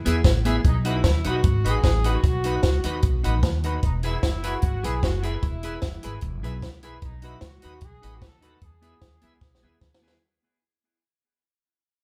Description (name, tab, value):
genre	ska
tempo	150 BPM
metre	4/4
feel	straight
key	E major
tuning	A4 = 440 Hz
part	mellow horn section	melody	0.0-9.8 s	D#4 to A4	-34 LUFS	equal	none
part	upright bass	bass	0.0-10.2 s	E1 to E2	-28 LUFS	equal	none
part	semi-hollow electric guitar	accompaniment	0.1-10.2 s	B3 to B4	-34 LUFS	equal	dub echo
part	bright tonewheel organ	stabs	0.1-10.1 s	F#4 to E5	-38 LUFS	equal	overdrive, slow rotary speaker
part	compact cocktail drum kit	drums	0.1-10.2 s	hi-hat, kick drum, snare drum	-25 LUFS	equal	none
room	light reverb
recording	band playing live in one room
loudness	-23 LUFS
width	mono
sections	0.0-10.2 A section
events	fade-out 0.0-10.2; drum fill 9.4-10.2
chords	0.0 E; 0.6 B; 3.8 E; 7.0 B; 8.6 E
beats	0.24 | 0.64 1.04 1.44 1.84 | 2.23 2.63 3.03 3.43 | 3.83 4.23 4.63 5.03 | 5.43 5.83 6.23 6.62 | 7.02 7.42 7.82 8.22 | 8.62 9.02 9.42 9.82